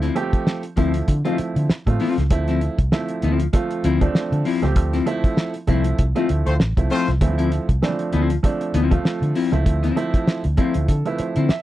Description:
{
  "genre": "funk",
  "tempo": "98 BPM",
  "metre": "4/4",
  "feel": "swing 56% on 16ths",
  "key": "D minor",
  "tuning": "A4 = 438 Hz",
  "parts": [
    { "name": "clean electric guitar", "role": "accompaniment", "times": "0.0-11.5 s", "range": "F3 to F4", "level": "-23 LUFS", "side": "left 6 dB", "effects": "none" },
    { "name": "warm upright piano", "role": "stabs", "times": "0.0-11.6 s", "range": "E3 to E5", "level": "-24 LUFS", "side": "right 4 dB", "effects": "none" },
    { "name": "vintage muted fingered electric bass", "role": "bass", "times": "0.0-11.5 s", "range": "A1 to D3", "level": "-21 LUFS", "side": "equal", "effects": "none" },
    { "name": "cloth-damped thuddy drum kit", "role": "drums", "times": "0.0-11.6 s", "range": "hi-hat, kick drum, snare drum", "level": "-20 LUFS", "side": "equal", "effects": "none" },
    { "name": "mellow horn section", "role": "second line", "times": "6.5-7.1 s", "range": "A3 to C5", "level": "-22 LUFS", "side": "left 2 dB", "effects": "none" }
  ],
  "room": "little or no reverb",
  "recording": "dry, close 1970s-style studio recording",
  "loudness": "-18 LUFS",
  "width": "side -14 dB against mid",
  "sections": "0.0-11.6 A section",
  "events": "band accent 4.8-7.2; upright piano fill 10.3-11.6",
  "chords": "0.0 Dm9"
}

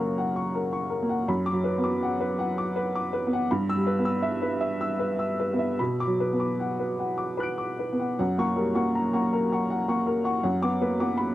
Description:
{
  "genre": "neoclassical minimalist piano",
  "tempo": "73-84 BPM",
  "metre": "3/4",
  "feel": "rubato",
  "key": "B harmonic minor",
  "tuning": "A4 = 438 Hz",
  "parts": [
    { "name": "clear upright piano", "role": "solo", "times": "0.0-11.3 s", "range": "F#2 to D7", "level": "-24 LUFS", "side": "equal", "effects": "none" }
  ],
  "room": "light reverb",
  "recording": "dry, close 1970s-style studio recording",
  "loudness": "-24 LUFS",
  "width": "side -14 dB against mid",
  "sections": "0.0-8.2 A section; 8.2-11.3 B section",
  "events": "none",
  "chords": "0.0 F#; 1.3 Bm/F#; 3.5 Em/G; 5.8 Bm; 8.2 F#; 10.4 Bm/F#"
}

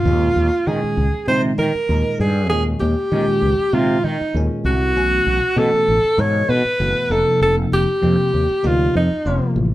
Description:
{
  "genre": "jazz",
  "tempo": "98 BPM",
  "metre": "4/4",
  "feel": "swing 54% on 16ths",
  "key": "Eb mixolydian",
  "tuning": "A4 = 440 Hz",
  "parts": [
    { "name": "breathy alto saxophone", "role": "melody", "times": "0.0-9.5 s", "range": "Eb4 to C#5", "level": "-18 LUFS", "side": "equal", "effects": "none" },
    { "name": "bell-like tine electric piano", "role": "accompaniment", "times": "0.1-9.6 s", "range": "Bb2 to A4", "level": "-23 LUFS", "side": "left 1 dB", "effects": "phaser" },
    { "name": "fretless electric bass", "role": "bass", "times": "0.1-9.7 s", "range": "F1 to Eb3", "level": "-20 LUFS", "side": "equal", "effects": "none" }
  ],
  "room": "light reverb",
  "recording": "band playing live in one room",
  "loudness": "-15 LUFS",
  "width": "side -15 dB against mid",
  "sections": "0.1-9.7 A section",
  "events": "none",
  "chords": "0.1 Eb7sus4; 5.0 B9sus4; 7.1 F9sus4"
}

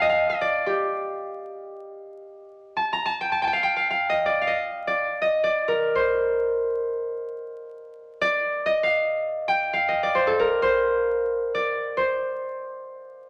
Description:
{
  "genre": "Turkish makam ensemble",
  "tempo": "free time",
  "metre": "none",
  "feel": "none",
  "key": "G makam ussak",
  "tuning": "A4 = 442 Hz",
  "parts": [
    { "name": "concert harp", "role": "solo", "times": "0.0-13.3 s", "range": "G4 to Bb5", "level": "-25 LUFS", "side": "equal", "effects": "none" }
  ],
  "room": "moderate large studio reverb, RT60 1.1 s",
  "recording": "vinyl crackle",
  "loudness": "-24 LUFS",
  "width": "mono",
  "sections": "0.0-2.3 A section; 2.3-13.3 A section",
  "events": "none",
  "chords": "none"
}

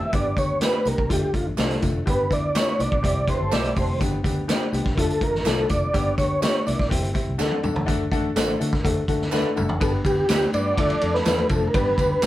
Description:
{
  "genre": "uptempo 1960s-style soul",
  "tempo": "124 BPM",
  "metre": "4/4",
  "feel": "straight",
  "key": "G mixolydian",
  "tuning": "A4 = 440 Hz",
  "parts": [
    { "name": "mellow tonewheel organ", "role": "melody", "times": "0.0-6.9, 9.8-12.3 s", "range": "F4 to E5", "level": "-24 LUFS", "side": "equal", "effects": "chorus vibrato" },
    { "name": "warm baby grand piano", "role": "accompaniment", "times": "0.0-12.3 s", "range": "G3 to C5", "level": "-28 LUFS", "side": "left 3 dB", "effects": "none" },
    { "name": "electric guitar through a small old amp", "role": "riff", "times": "0.0-0.2, 3.3-4.1, 10.7-11.6 s", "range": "E3 to B4", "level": "-33 LUFS", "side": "left 1 dB", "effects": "tremolo" },
    { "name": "vintage muted fingered electric bass", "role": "bass", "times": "0.1-12.3 s", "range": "F1 to D3", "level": "-28 LUFS", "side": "equal", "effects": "none" },
    { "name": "vintage drum kit", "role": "drums", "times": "0.1-12.3 s", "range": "hi-hat, kick drum, ride cymbal, snare drum, toms", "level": "-24 LUFS", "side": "equal", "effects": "none" },
    { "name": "tambourine and handclaps", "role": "percussion", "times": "0.1-12.3 s", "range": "none", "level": "-38 LUFS", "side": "right 5 dB", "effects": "none" },
    { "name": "electric guitar through a small old amp", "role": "stabs", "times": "0.6-12.3 s", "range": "F4 to F#5", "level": "-30 LUFS", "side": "right 2 dB", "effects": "harmonic tremolo" }
  ],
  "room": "moderate studio reverb, RT60 0.8 s",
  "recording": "band playing live in one room",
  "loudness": "-20 LUFS",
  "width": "side -14 dB against mid",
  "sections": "0.0-7.9 A section; 7.9-9.8 B section; 9.8-12.3 C section",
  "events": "tonewheel organ solo 0.0-7.9; drum fill 7.4-7.9, 9.3-9.8",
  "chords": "0.1 G; 1.1 Dm; 2.1 G; 3.0 C; 4.0 G; 5.0 Dm; 5.9 G; 6.9 C; 7.4 D; 9.8 G; 10.8 Dm; 11.7 G"
}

